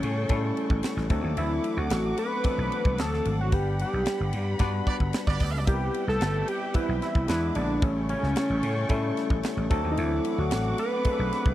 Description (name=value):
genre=polished 1980s jazz-funk pop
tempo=112 BPM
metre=4/4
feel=straight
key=unclear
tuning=A4 = 440 Hz
part: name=fat analog lead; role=melody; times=0.0-11.5 s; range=C#4 to B4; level=-29 LUFS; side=equal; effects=chorus
part: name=barky tine electric piano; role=accompaniment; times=0.0-11.5 s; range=E3 to F#5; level=-32 LUFS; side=left 3 dB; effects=wide subtle chorus
part: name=rich studio string section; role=sustained chords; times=0.0-11.5 s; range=G3 to D6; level=-37 LUFS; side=right 1 dB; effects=none
part: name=vintage slap bass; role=bass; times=0.0-11.5 s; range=G1 to A2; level=-28 LUFS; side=equal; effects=none
part: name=tight funk drum kit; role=drums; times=0.0-11.5 s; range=hi-hat, kick drum, ride cymbal, snare drum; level=-28 LUFS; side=equal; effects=none
part: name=clear horn section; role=second line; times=4.6-5.7 s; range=B3 to D5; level=-32 LUFS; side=right 6 dB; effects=none
room=little or no reverb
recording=dry, close 1970s-style studio recording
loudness=-24 LUFS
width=side -14 dB against mid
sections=0.0-11.5 A section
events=band accent 3.5-5.7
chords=0.0 A7; 1.1 D7; 3.5 Gmaj7; 5.7 Cmaj7; 7.3 E7; 7.8 A7; 9.7 D7